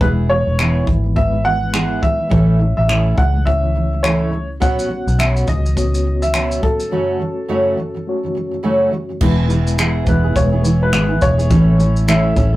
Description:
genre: acoustic pop.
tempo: 104 BPM.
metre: 4/4.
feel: swing 60% on 16ths.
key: E major.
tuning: A4 = 440 Hz.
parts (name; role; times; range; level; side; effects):
clear upright piano; melody; 0.0-12.6 s; A4 to F#5; -21 LUFS; equal; none.
fingerpicked steel-string acoustic guitar; accompaniment; 0.0-12.6 s; F#2 to A4; -19 LUFS; right 1 dB; none.
reed electric piano; accompaniment; 0.0-12.6 s; G#3 to C#5; -25 LUFS; left 2 dB; fast tremolo.
vintage muted fingered electric bass; bass; 0.0-12.6 s; E1 to C#2; -17 LUFS; equal; none.
compact cocktail drum kit; drums; 0.0-12.5 s; crash cymbal, finger snaps, kick drum, shaker; -20 LUFS; equal; none.
room: moderate small room reverb, RT60 0.5 s.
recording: rough rehearsal-room recording, warm saturation.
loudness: -14 LUFS.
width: side -16 dB against mid.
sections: 0.0-9.2 A section; 9.2-12.6 B section.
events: none.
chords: 0.0 E; 2.3 A; 4.6 Bsus2; 6.9 F#m; 9.2 E; 11.5 A.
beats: | 0.01 0.59 1.16 1.74 | 2.31 2.89 3.47 4.04 | 4.62 5.19 5.77 6.34 | 6.92 7.49 8.06 8.64 | 9.21 9.79 10.36 10.93 | 11.51 12.08.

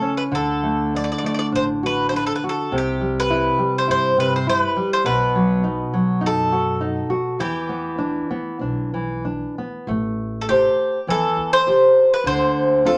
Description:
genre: fado-style ballad.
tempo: 102 BPM.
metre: 4/4.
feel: rubato.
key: E minor, A minor from 9.9 s.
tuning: A4 = 440 Hz.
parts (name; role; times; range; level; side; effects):
Greek bouzouki; melody; 0.0-13.0 s; G4 to D5; -22 LUFS; equal; none.
nylon-string guitar; accompaniment; 0.0-13.0 s; B2 to C5; -23 LUFS; equal; none.
upright bass; bass; 0.3-13.0 s; A1 to G2; -33 LUFS; equal; none.
room: wet small room reverb, RT60 0.5 s.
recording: none.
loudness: -20 LUFS.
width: mono.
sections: 0.0-9.9 A section; 9.9-13.0 B section.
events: none.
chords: 0.3 D; 2.7 C; 5.0 B7; 7.4 Em7; 9.9 Am7; 12.3 Dm7.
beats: | 0.31 0.92 1.52 2.12 | 2.71 3.30 3.89 4.46 | 5.04 5.63 6.22 6.80 | 7.39 7.99 8.60 9.24 | 9.88 10.48 11.08 11.67 | 12.25 12.84.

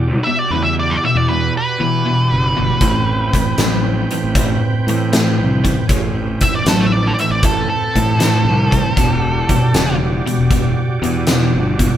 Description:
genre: blues rock power trio and southern rock.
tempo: 78 BPM.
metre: 4/4.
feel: swing 68% on 8ths.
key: E minor.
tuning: A4 = 440 Hz.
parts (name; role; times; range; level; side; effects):
overdriven tonewheel organ; sustained chords; 0.0-12.0 s; C4 to G5; -26 LUFS; right 3 dB; chorus vibrato.
cranked stack guitar; riff; 0.0-12.0 s; E2 to F#3; -18 LUFS; equal; overdrive.
fuzz fingered electric bass; bass; 0.0-11.9 s; E1 to E3; -20 LUFS; equal; overdrive.
octave-fuzz lead guitar; melody; 0.2-10.0 s; A4 to E5; -19 LUFS; right 1 dB; distortion.
huge arena drum kit; drums; 2.8-11.9 s; hi-hat, kick drum, snare drum; -18 LUFS; equal; none.
room: light reverb.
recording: band playing live in one room.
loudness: -13 LUFS.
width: side -10 dB against mid.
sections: 0.0-12.0 A section.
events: none.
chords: 0.0 Em7; 2.8 Am7; 9.0 Em7.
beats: 0.50 1.27 2.04 | 2.81 3.58 4.36 5.13 | 5.90 6.67 7.43 8.20 | 8.97 9.74 10.51 11.28.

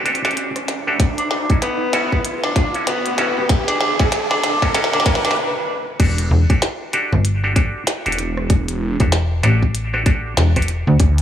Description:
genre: glitch hop.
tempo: 96 BPM.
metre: 4/4.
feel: swing 60% on 16ths.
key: E dorian.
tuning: A4 = 441 Hz.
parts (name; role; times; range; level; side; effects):
auto-wah clav; stabs; 0.0-10.7 s; C#4 to A4; -24 LUFS; right 1 dB; sidechain pumping, diffuse ambient delay.
phased detuned saw bass; bass; 0.0-11.2 s; E1 to D2; -24 LUFS; equal; phaser, tube saturation, high-pass filter.
riser; sound effects; 0.0-5.4 s; none; -24 LUFS; right 1 dB; none.
glitchy drum kit; drums; 0.1-11.2 s; crash cymbal, hi-hat, rim click, snare drum; -23 LUFS; equal; high-pass filter on snare, high-pass filter on hats, high-pass filter on cymbals.
electronic kick drum; drums; 1.0-11.1 s; none; -17 LUFS; equal; none.
raspy tenor saxophone; melody; 1.2-5.3 s; B3 to D4; -22 LUFS; equal; vintage 12-bit sampler grit, low-pass filter, diffuse ambient delay.
slap-like FM bass; bass; 6.3-11.0 s; E1 to D2; -16 LUFS; equal; tube saturation.
room: wet plate reverb, RT60 2.0 s.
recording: dreamy mix soaked in reverb.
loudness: -16 LUFS.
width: side -10 dB against mid.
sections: 0.0-6.0 A section; 6.0-11.2 B section.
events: build-up 0.0-6.0; drum fill 0.0-5.4; riser 0.0-5.4; filter sweep on tenor saxophone 0.0-6.0; stop 5.4-6.0; drop 6.0-11.2.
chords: 0.0 Em11; 1.0 Dmaj7; 6.0 Em11.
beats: 0.37 | 1.00 1.62 2.25 2.87 | 3.50 4.12 4.75 5.37 | 6.00 6.62 7.25 7.87 | 8.50 9.12 9.75 10.37 | 11.00.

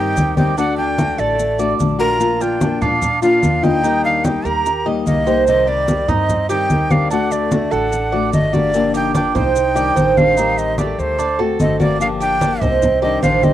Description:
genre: latin, Cuban son and guajira.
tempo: 147 BPM.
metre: 4/4.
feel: straight.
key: unclear.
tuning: A4 = 440 Hz.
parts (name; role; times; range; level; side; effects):
breathy bright jazz flute; melody; 0.0-13.5 s; C5 to Bb5; -19 LUFS; equal; none.
clear trumpet; second line; 0.0-13.5 s; G3 to G4; -28 LUFS; right 5 dB; cassette tape.
nylon-string guitar; accompaniment; 0.0-13.5 s; C3 to G4; -21 LUFS; left 6 dB; cassette tape.
Cuban tres; arpeggios; 0.0-13.5 s; D4 to Eb5; -20 LUFS; right 6 dB; cassette tape, plate reverb.
upright bass; bass; 0.0-13.5 s; G1 to Bb2; -26 LUFS; equal; none.
congas; percussion; 0.2-13.5 s; none; -19 LUFS; equal; none.
maracas; percussion; 0.2-13.5 s; none; -35 LUFS; left 9 dB; none.
room: wet booth ambience, RT60 0.2 s.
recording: home recording on cassette.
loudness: -14 LUFS.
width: side -12 dB against mid.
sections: 0.0-8.7 A section; 8.7-13.5 B section.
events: none.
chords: 0.0 Cm; 0.6 D; 2.2 Bb; 3.8 Eb; 5.5 Cm; 7.1 D; 8.7 Gm7; 9.6 Am7b5; 11.2 D7; 12.0 Gm7; 12.8 Am7b5.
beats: 0.17 | 0.57 0.98 1.39 1.80 | 2.21 2.62 3.02 3.43 | 3.84 4.25 4.66 5.07 | 5.47 5.88 6.29 6.70 | 7.11 7.52 7.93 8.34 | 8.74 9.15 9.56 9.97 | 10.38 10.78 11.19 11.60 | 12.01 12.41 12.82 13.23.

